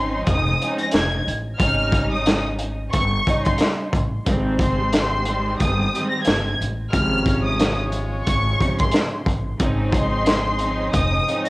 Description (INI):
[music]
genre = hip hop, boom-bap hip-hop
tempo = 90 BPM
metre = 4/4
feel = swing 58% on 16ths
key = Ab major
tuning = A4 = 439 Hz
[part]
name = warm studio violin section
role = melody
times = 0.0-11.5 s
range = C6 to Bb6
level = -24 LUFS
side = left 1 dB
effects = high-pass filter, low-pass filter, cassette tape, analog delay
[part]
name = warm studio string section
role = accompaniment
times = 0.0-11.5 s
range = Ab2 to Eb4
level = -26 LUFS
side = right 1 dB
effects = cassette tape, high-pass filter, low-pass filter
[part]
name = upright bass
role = bass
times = 0.0-11.2 s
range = F1 to A1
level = -24 LUFS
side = equal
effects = none
[part]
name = crunchy breakbeat drum kit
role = drums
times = 0.3-11.5 s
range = hi-hat, kick drum, snare drum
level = -21 LUFS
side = equal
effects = cassette tape
[part]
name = clear horn section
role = stabs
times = 4.3-11.5 s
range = Ab3 to Eb5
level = -32 LUFS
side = left 1 dB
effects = high-pass filter, low-pass filter, cassette tape
[sound]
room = little or no reverb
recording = home recording on cassette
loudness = -18 LUFS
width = side -21 dB against mid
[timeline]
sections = 0.0-11.5 A section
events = none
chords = 0.0 Bbm11/F (rootless); 1.6 Eb7/Ab; 4.3 Abmaj7; 6.9 Dbmaj7/Ab; 9.6 Bbm11 (rootless)